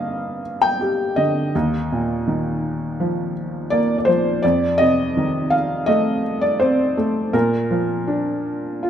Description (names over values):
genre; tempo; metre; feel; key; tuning
classical, lyrical solo piano; 82 BPM; 4/4; rubato; unclear; A4 = 439 Hz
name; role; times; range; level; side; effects
felt-muted upright piano; solo; 0.0-8.9 s; Eb2 to G5; -18 LUFS; equal; none
room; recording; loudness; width
moderate recital hall reverb, RT60 1.5 s; none; -18 LUFS; side -9 dB against mid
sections
0.0-8.9 A section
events
none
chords
0.0 Gm; 1.5 Ebsus2; 4.4 F7; 7.3 Bb